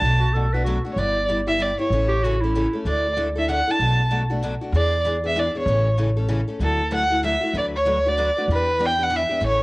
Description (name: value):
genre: acoustic string swing (jazz manouche)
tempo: 192 BPM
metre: 3/4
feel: swing 60% on 8ths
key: D major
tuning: A4 = 441 Hz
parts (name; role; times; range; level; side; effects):
- warm violin; melody; 0.0-9.6 s; A4 to A5; -22 LUFS; right 1 dB; cassette tape
- picked steel-string acoustic guitar; accompaniment; 0.0-9.6 s; B2 to B4; -27 LUFS; left 2 dB; cassette tape
- upright bass; bass; 0.0-9.6 s; G1 to E2; -23 LUFS; equal; none
- clear clarinet; second line; 0.2-2.8 s; E4 to B4; -27 LUFS; right 1 dB; cassette tape
room: light reverb, small room ambience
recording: home recording on cassette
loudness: -19 LUFS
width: side -22 dB against mid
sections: 0.0-6.6 A section; 6.6-9.6 B section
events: none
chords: 0.0 Bm7; 1.0 G6; 1.9 A; 2.8 Dsus2; 3.8 Bm7; 4.7 E7; 5.7 A; 6.6 Dadd9; 7.5 Bm7/D; 8.5 Em7